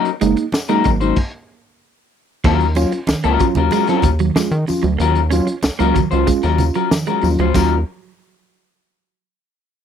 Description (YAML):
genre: funk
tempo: 94 BPM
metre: 4/4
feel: straight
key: Eb dorian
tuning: A4 = 440 Hz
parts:
  - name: electric guitar at the edge of break-up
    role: accompaniment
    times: 0.0-7.7 s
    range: Gb3 to C5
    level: -18 LUFS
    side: left 12 dB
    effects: none
  - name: clean electric guitar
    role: riff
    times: 0.0-7.7 s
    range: Gb3 to Db4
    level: -23 LUFS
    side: right 12 dB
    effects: spring reverb
  - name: mellow tine electric piano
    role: stabs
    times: 0.0-7.8 s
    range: Eb3 to F4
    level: -20 LUFS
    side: right 2 dB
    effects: wide subtle chorus
  - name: crunchy breakbeat drum kit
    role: drums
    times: 0.1-7.7 s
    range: crash cymbal, hi-hat, kick drum, snare drum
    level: -21 LUFS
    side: equal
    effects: none
  - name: rubbery square bass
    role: bass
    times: 0.2-7.8 s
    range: Gb1 to Eb3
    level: -18 LUFS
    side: equal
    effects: none
  - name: congas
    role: percussion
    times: 0.2-7.8 s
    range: none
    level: -25 LUFS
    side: right 3 dB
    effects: none
  - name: tambourine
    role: percussion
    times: 0.2-7.8 s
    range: none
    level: -34 LUFS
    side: left 9 dB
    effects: none
room: little or no reverb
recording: dry, close 1970s-style studio recording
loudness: -14 LUFS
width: side -8 dB against mid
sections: 0.0-2.4 A section; 2.4-7.5 B section; 7.5-9.8 C section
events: stop 1.2-2.4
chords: 0.0 Gb6; 2.4 Ebm9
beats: 0.53 1.17 1.81 | 2.44 3.08 3.72 4.36 | 4.99 5.63 6.27 6.91 | 7.55